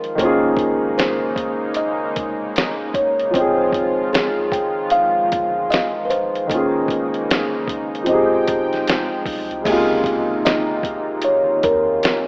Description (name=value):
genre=lo-fi hip hop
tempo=76 BPM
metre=4/4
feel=swing 61% on 16ths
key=F minor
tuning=A4 = 440 Hz
part: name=kalimba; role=melody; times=0.0-12.3 s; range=Ab4 to G5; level=-23 LUFS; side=equal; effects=low-pass filter
part: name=warm upright piano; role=accompaniment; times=0.0-12.3 s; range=C3 to G5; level=-23 LUFS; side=equal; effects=cassette tape, low-pass filter
part: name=warm analog pad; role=sustained chords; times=0.0-12.3 s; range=Db3 to G5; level=-29 LUFS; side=equal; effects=chorus, tremolo, low-pass filter
part: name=soft dub sub bass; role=bass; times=0.0-12.0 s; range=D1 to Eb2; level=-44 LUFS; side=equal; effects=none
part: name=lo-fi sampler-style drum kit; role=drums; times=0.0-12.3 s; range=crash cymbal, hi-hat, kick drum, snare drum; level=-25 LUFS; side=equal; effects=vintage 12-bit sampler grit
room=moderate lush hall reverb, RT60 2.4 s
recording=rough home demo mix, small speaker sound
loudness=-19 LUFS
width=mono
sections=0.0-9.7 A section; 9.7-12.3 B section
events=none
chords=0.2 Eb7sus4; 3.3 Fm9; 6.5 Eb7sus4; 8.1 Fm9; 9.7 Dbmaj13